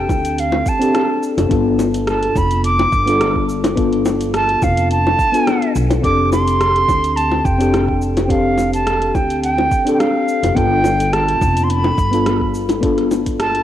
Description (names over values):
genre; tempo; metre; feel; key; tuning
sunset chillout; 106 BPM; 4/4; swing 53% on 16ths; unclear; A4 = 440 Hz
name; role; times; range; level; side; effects
concert flute; melody; 0.0-13.6 s; F5 to D6; -18 LUFS; right 1 dB; cassette tape, tape echo
mellow FM electric piano; accompaniment; 0.0-13.6 s; B3 to A4; -18 LUFS; left 2 dB; chorus, auto-pan, cassette tape
upright bass; bass; 0.0-13.6 s; F1 to D2; -21 LUFS; right 1 dB; none
deep house drum kit; drums; 0.1-13.6 s; hi-hat, rim click, shaker; -26 LUFS; right 1 dB; overdrive, cassette tape
electronic kick drum; drums; 0.1-13.4 s; none; -21 LUFS; right 1 dB; overdrive, cassette tape
bongos; percussion; 0.1-13.2 s; none; -23 LUFS; left 2 dB; none
room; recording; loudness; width
moderate lush hall reverb, RT60 2.0 s; home recording on cassette; -14 LUFS; side -11 dB against mid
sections
0.0-13.6 A section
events
none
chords
0.0 F69; 1.5 G9; 6.0 F69; 10.6 G9